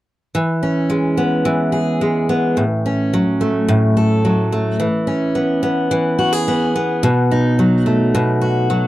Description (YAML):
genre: pop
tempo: 108 BPM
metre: 4/4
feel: straight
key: E major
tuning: A4 = 438 Hz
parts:
  - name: picked steel-string acoustic guitar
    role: accompaniment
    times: 0.3-8.9 s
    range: A2 to A4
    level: -14 LUFS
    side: equal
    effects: none
room: little or no reverb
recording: dry, close 1970s-style studio recording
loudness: -14 LUFS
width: side -15 dB against mid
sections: 0.4-8.9 A section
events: none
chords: 0.4 E6; 2.6 A6; 4.8 E6; 7.0 B7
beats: | 0.35 0.91 1.47 2.02 | 2.58 3.13 3.69 4.25 | 4.80 5.36 5.92 6.47 | 7.03 7.59 8.14 8.70